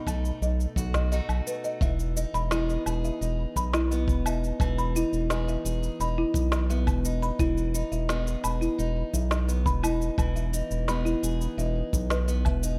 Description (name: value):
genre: folktronica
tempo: 86 BPM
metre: 4/4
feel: straight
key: E major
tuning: A4 = 440 Hz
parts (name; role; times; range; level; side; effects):
- folk marimba with soft mallets; second line; 0.0-12.6 s; E4 to B5; -34 LUFS; equal; digital delay
- picked steel-string acoustic guitar; arpeggios; 0.0-12.8 s; B2 to G#4; -36 LUFS; equal; vintage 12-bit sampler grit, digital delay
- round analog bass; bass; 0.1-12.8 s; E1 to B1; -30 LUFS; equal; none
- electronic woodblock, cabasa and snare drum; drums; 0.1-12.8 s; none; -36 LUFS; equal; overdrive
- kick drum; drums; 0.1-12.6 s; none; -31 LUFS; equal; none
room: little or no reverb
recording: none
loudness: -27 LUFS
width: mono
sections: 0.0-1.8 A section; 1.8-12.8 B section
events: none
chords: 0.0 B7; 1.8 Emaj7